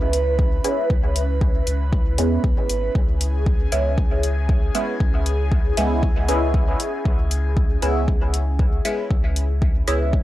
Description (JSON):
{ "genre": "dub techno", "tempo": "117 BPM", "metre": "4/4", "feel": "swing 56% on 16ths", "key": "C# minor", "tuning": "A4 = 440 Hz", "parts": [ { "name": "airy breathy pad", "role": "sustained chords", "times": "0.0-10.2 s", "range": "C#4 to B4", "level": "-28 LUFS", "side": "right 1 dB", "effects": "chorus, phaser, sidechain pumping" }, { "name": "pure sine sub bass", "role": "bass", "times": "0.0-10.2 s", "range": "G#1 to E2", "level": "-22 LUFS", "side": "equal", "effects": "sidechain pumping" }, { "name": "electronic hi-hat", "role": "drums", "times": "0.1-10.0 s", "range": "none", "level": "-28 LUFS", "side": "left 2 dB", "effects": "overdrive" }, { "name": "electronic kick drum", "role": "drums", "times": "0.4-10.2 s", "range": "none", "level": "-20 LUFS", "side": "equal", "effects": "overdrive" }, { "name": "filtered dub chord stab", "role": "stabs", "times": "0.6-10.2 s", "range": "G#3 to E4", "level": "-25 LUFS", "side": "right 1 dB", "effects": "phaser, sidechain pumping, dub echo" } ], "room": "little or no reverb", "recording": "dry, gritty hardware recording", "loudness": "-18 LUFS", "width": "side -15 dB against mid", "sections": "0.0-10.2 A section", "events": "none", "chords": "0.0 C#m7" }